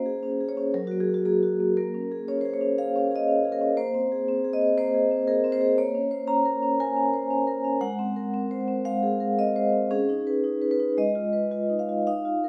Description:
classical, contemporary piece for solo vibraphone; 117 BPM; 4/4; rubato; A4 = 440 Hz
vibraphone with soft mallets; solo; 0.0-12.5 s; Gb3 to Bb5; -25 LUFS; equal
wet recital hall reverb, RT60 1.6 s; -25 LUFS; mono
0.0-12.5 A section
0.0 Bbm9; 0.7 Gbadd9; 1.8 Bbm7; 3.8 Abadd9/Bb; 5.8 Bbm9; 7.8 Ab9; 9.9 Dbsus2; 11.0 Abm6

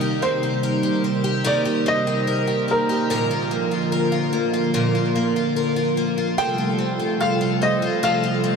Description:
dream pop; 73 BPM; 4/4; straight; A4 = 438 Hz
hollow soft pad; sustained chords; 0.0-8.6 s; C3 to Bb4; -23 LUFS; right 2 dB; chorus
picked twelve-string acoustic guitar; arpeggios; 0.0-8.6 s; Bb2 to Bb4; -23 LUFS; left 3 dB; lush chorus, ping-pong delay
felt-muted upright piano; melody; 0.2-8.6 s; Bb4 to G5; -25 LUFS; equal; ping-pong delay
moderate huge ambient reverb, RT60 9.5 s; -19 LUFS; side -5 dB against mid
0.0-8.6 A section
0.0 Cm7; 3.1 Bb; 6.4 Fadd9

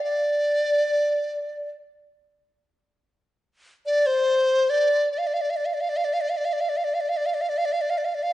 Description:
chinese traditional; 70 BPM; 4/4; rubato; D yu mode; A4 = 440 Hz
hollow large dizi; solo; 0.0-8.3 s; C5 to F5; -21 LUFS; equal
moderate recital hall reverb, RT60 1.4 s; recorded in a church or concert hall, nothing above 10.3 kHz; -21 LUFS; side -14 dB against mid
0.0-8.3 A section

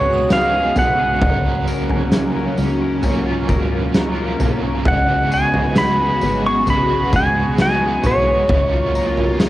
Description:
dream pop; 66 BPM; 4/4; straight; Db mixolydian; A4 = 440 Hz
pedal steel guitar; melody; 0.0-9.5 s; Db5 to Db6; -18 LUFS; right 1 dB; cassette tape, tape echo
overdriven electric guitar; accompaniment; 0.0-9.5 s; Db3 to Bb4; -25 LUFS; right 5 dB; tremolo, wide subtle chorus, cassette tape
phased analog pad; sustained chords; 0.0-9.5 s; Db3 to Gb4; -23 LUFS; equal; phaser, chorus, cassette tape
clean electric guitar; arpeggios; 0.0-9.5 s; Db3 to Bb4; -26 LUFS; left 5 dB; analog chorus, cassette tape, tape echo
plucky analog bass; bass; 0.0-9.5 s; Ab1 to Db2; -25 LUFS; equal
shimmering bell with halo; texture; 0.0-1.9, 8.0-8.9 s; Cb6 to F6; -37 LUFS; right 2 dB
oversized low-tuned drum kit; drums; 0.3-9.5 s; kick drum, snare drum, tambourine, toms; -20 LUFS; equal; cassette tape
light reverb, studio ambience; home recording on cassette, vinyl crackle; -15 LUFS; side -15 dB against mid
0.0-9.5 A section
0.0 Db7sus4; 1.2 Gbmaj7/Db; 4.9 Db7sus4; 8.5 Gbmaj7/Db

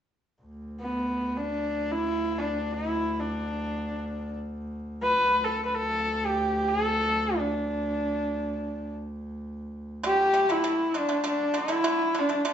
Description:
mongolian traditional, Mongolian folk; free time; D zhi mode; A4 = 440 Hz
bright double bass; drone; 0.4-10.1 s; D2; -34 LUFS; equal
rich horsehead fiddle; melody; 0.8-12.5 s; B3 to B4; -25 LUFS; equal
pipa; arpeggios; 10.0-12.5 s; D3 to A3; -30 LUFS; right 3 dB
wet large studio reverb, RT60 0.9 s; band playing live in one room, nothing above 8.0 kHz; -25 LUFS; side -9 dB against mid
0.4-10.0 A section; 10.0-12.5 B section
0.4 N.C.; 10.0 D5

